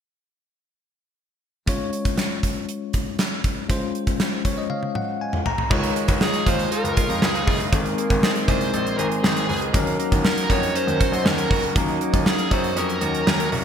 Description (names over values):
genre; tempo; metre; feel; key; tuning
1980s-style pop; 119 BPM; 4/4; straight; Db major; A4 = 440 Hz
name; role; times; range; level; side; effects
bell-like tine electric piano; accompaniment; 1.7-13.6 s; Gb3 to Bb5; -26 LUFS; left 3 dB; medium stereo tremolo
gated 80s drum kit; drums; 1.7-13.6 s; crash cymbal, hi-hat, kick drum, snare drum, toms; -22 LUFS; right 1 dB; none
chorused pulse-width pad; sustained chords; 5.7-13.6 s; Ab4 to Eb6; -31 LUFS; right 3 dB; none
direct-recorded clean electric guitar; riff; 5.7-13.6 s; Eb3 to Ab4; -30 LUFS; right 4 dB; wide subtle chorus, ping-pong delay
clear baby grand piano; bass; 5.7-13.6 s; Gb1 to Gb2; -27 LUFS; left 1 dB; none
bluesy overdriven lead guitar; melody; 6.2-13.5 s; Ab4 to Db5; -26 LUFS; equal; distortion, ping-pong delay
room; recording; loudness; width
moderate lush hall reverb, RT60 1.6 s, small room reverb; bright 1980s-style digital production; -19 LUFS; side -8 dB against mid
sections
1.7-5.7 A section; 5.7-13.6 B section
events
tine electric piano fill 4.2-5.7; drum fill 4.7-5.7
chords
1.7 Db; 5.5 N.C.; 5.7 Dbadd9; 7.7 Abadd9; 9.7 Ebm7